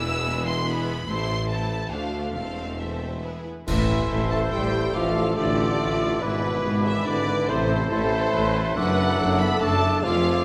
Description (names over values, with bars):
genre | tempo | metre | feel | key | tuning
classical, dramatic, fast romantic movement for symphony orchestra | 142 BPM | 3/4 | rubato | A minor | A4 = 440 Hz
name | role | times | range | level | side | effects
rich symphonic violin section | melody | 0.0-10.4 s | A4 to E6 | -33 LUFS | equal | none
clear symphonic violin section | second line | 0.0-10.4 s | A3 to C5 | -40 LUFS | equal | none
warm symphonic viola section | accompaniment | 0.0-10.4 s | A3 to C5 | -34 LUFS | equal | none
clear symphonic cello section | bass | 0.0-10.4 s | D2 to A2 | -33 LUFS | equal | none
rich symphonic double bass section | bass | 0.0-10.4 s | E1 to D2 | -32 LUFS | equal | none
warm tuba | bass | 0.0-10.4 s | E1 to D2 | -33 LUFS | equal | none
clear oboe | second line | 3.7-10.4 s | A4 to C5 | -34 LUFS | equal | none
dark clarinet | second line | 3.7-10.4 s | D4 to F4 | -33 LUFS | equal | none
silver concert flute | second line | 3.7-10.4 s | C6 to D6 | -35 LUFS | equal | none
mellow bassoon | accompaniment | 3.7-10.4 s | E3 to A3 | -33 LUFS | equal | none
mellow French horn section | sustained chords | 3.7-10.4 s | A2 to B3 | -32 LUFS | equal | none
clash cymbals and concert bass drum | percussion | 3.7-4.5 s | none | -35 LUFS | equal | none
room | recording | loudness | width
wet recital hall reverb, RT60 1.5 s | none | -24 LUFS | mono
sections
0.0-3.7 A section; 3.7-10.4 B section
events
band accent 3.7-4.1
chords
0.0 E; 1.1 Am; 1.9 Dm7; 2.4 Am/E; 3.2 E; 3.7 Am; 4.9 Dm/A; 6.2 E7/G#; 7.5 Am; 8.8 D/F#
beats
0.26 0.67 | 1.08 1.50 1.92 | 2.36 2.80 3.24 | 3.67 4.10 4.52 | 4.94 5.37 5.79 | 6.22 6.64 7.06 | 7.49 7.90 8.32 | 8.76 9.18 9.61 | 10.04